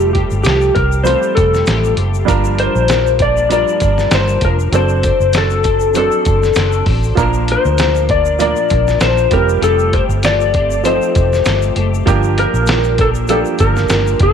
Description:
indie pop, bedroom pop; 98 BPM; 4/4; swing 55% on 16ths; A4 = 440 Hz
electric slide guitar; melody; 0.0-14.3 s; G4 to D5; -15 LUFS; left 3 dB; analog chorus, tape echo
twelve-string electric guitar; accompaniment; 0.0-14.3 s; G2 to A4; -22 LUFS; left 12 dB; ensemble chorus, vibrato effect
warm upright piano; accompaniment; 0.0-14.3 s; F3 to C5; -21 LUFS; right 11 dB
vintage muted fingered electric bass; bass; 0.0-14.3 s; F1 to D2; -16 LUFS; equal
egg shaker; percussion; 0.0-14.2 s; -36 LUFS; left 14 dB
dusty soul sampler-style drum kit; drums; 0.1-14.3 s; hi-hat, kick drum, snare drum; -18 LUFS; equal
light reverb, digital ambience; 1960s-style stereo with parts hard left and right; -11 LUFS; side -7 dB against mid
0.0-14.3 A section
0.0 Fadd9; 2.3 Gm7; 4.7 D7/F#; 7.2 Bb; 9.3 Fadd9; 12.1 Gm7
0.45 1.06 1.67 | 2.28 2.89 3.50 4.11 | 4.72 5.34 5.95 6.56 | 7.17 7.78 8.40 9.01 | 9.62 10.23 10.84 11.46 | 12.07 12.68 13.29 13.90

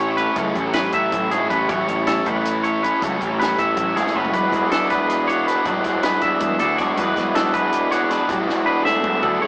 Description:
math rock and midwest emo; 318 BPM (eighths); 7/8; straight; A major; A4 = 440 Hz
electric guitar through a small old amp; accompaniment; 0.0-9.5 s; A2 to F#4; -27 LUFS; equal
twangy electric guitar; arpeggios; 0.0-9.5 s; G#4 to E5; -24 LUFS; equal
cranked stack guitar; riff; 0.0-9.5 s; E3 to D5; -27 LUFS; equal; overdrive
fuzz picked electric bass; bass; 0.0-9.5 s; E1 to D2; -27 LUFS; equal; overdrive
compact cocktail drum kit; drums; 0.2-9.3 s; hi-hat, kick drum, snare drum, toms; -31 LUFS; equal
moderate stone room reverb, RT60 1.0 s; rough rehearsal-room recording, warm saturation, small speaker sound; -20 LUFS; mono
0.0-9.5 A section
drum fill 4.1, 8.5-9.5
0.0 Amaj9; 4.3 E9sus4
0.17 | 0.36 0.55 0.74 0.93 1.12 1.31 1.50 | 1.69 1.88 2.07 2.26 2.44 2.63 2.82 | 3.01 3.20 3.39 3.58 3.77 3.96 4.14 | 4.33 4.52 4.71 4.90 5.09 5.28 5.47 | 5.65 5.84 6.03 6.22 6.41 6.60 6.78 | 6.97 7.16 7.35 7.54 7.72 7.91 8.10 | 8.29 8.48 8.66 8.85 9.04 9.23 9.41

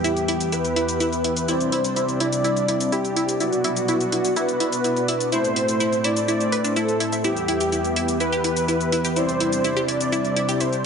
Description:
progressive house; 125 BPM; 4/4; straight; E minor; A4 = 439 Hz
wide unison lead; melody; 0.0-10.9 s; F#4 to D5; -24 LUFS; equal; dub echo
lush unison pad; sustained chords; 0.0-10.9 s; E2 to G4; -28 LUFS; equal; chorus
wide unison pluck; arpeggios; 0.0-10.7 s; D4 to E5; -26 LUFS; equal; tape echo
soft supersaw; stabs; 0.0-10.9 s; A3 to E5; -27 LUFS; left 2 dB; low-pass filter, tape echo
electronic hi-hat and shaker; drums; 0.0-10.8 s; -29 LUFS; left 2 dB; low-pass filter on hats, low-pass filter on perc
moderate lush hall reverb, RT60 1.9 s, digital ambience; nothing above 10.6 kHz; -19 LUFS; side -6 dB against mid
0.0-10.9 A section
0.0 Em; 1.5 Cadd9; 3.4 Bm; 5.3 Am; 7.2 Em; 9.2 Cadd9
0.04 0.52 1.00 | 1.48 1.96 2.44 2.92 | 3.40 3.88 4.36 4.84 | 5.32 5.80 6.28 6.76 | 7.24 7.72 8.20 8.68 | 9.16 9.64 10.12 10.60

